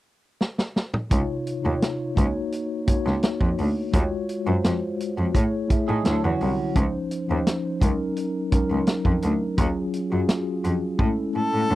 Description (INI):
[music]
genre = lush 1970s-style soul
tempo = 85 BPM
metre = 4/4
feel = straight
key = Db major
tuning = A4 = 440 Hz
[part]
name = vintage drum kit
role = drums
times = 0.4-11.2 s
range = hi-hat, kick drum, snare drum, toms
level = -23 LUFS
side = equal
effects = none
[part]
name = mellow tine electric piano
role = accompaniment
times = 1.1-11.8 s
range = C3 to E5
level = -26 LUFS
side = left 1 dB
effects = medium stereo tremolo
[part]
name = bright cello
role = bass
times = 1.1-11.8 s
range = C2 to A2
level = -25 LUFS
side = equal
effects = none
[part]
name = electric guitar through a small old amp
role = riff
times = 5.9-6.7 s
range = C#4 to A4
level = -29 LUFS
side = right 7 dB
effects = none
[part]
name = warm harmonica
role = melody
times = 11.4-11.8 s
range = A4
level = -24 LUFS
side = left 2 dB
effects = none
[sound]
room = little or no reverb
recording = dry, close 1970s-style studio recording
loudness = -21 LUFS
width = side -16 dB against mid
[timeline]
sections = 0.0-1.1 A section; 1.1-11.8 B section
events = drum fill 0.4-1.1, 11.0-11.8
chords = 0.0 N.C.; 1.1 Dbmaj9; 2.2 Gb6/Db; 3.9 Ebm11 (rootless); 5.3 Amaj7; 6.1 Dmaj9; 6.8 Dbmaj9; 7.8 Gb6/Db; 9.6 Ebm11 (rootless); 11.0 Amaj7